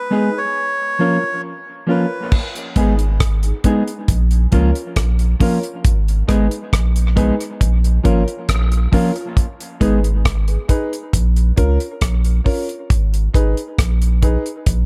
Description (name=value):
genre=dub reggae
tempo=68 BPM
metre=4/4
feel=straight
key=G# dorian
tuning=A4 = 441 Hz
part: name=melodica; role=melody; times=0.0-2.3 s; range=B4 to C#5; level=-24 LUFS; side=equal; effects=dub echo
part: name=mellow electric guitar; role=accompaniment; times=0.1-10.0 s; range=E#3 to G#4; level=-23 LUFS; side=equal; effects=high-pass filter, dub echo
part: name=warm upright piano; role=stabs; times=0.1-14.4 s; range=B3 to B4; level=-28 LUFS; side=equal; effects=high-pass filter, dub echo
part: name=damped 70s drum kit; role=drums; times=2.3-14.9 s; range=crash cymbal, hi-hat, kick drum, rim click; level=-20 LUFS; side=equal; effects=none
part: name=warm sub bass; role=bass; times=2.8-14.9 s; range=G#1 to C#2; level=-18 LUFS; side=equal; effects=none
room=light reverb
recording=none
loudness=-17 LUFS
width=mono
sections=0.0-2.3 A section; 2.3-14.9 B section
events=break 0.0-2.3; filter sweep 12.9-14.9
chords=0.0 G#m; 0.6 A#m; 2.3 G#m; 4.1 A#m; 5.8 G#m; 7.6 A#m; 9.4 G#m; 11.1 A#m; 12.9 G#m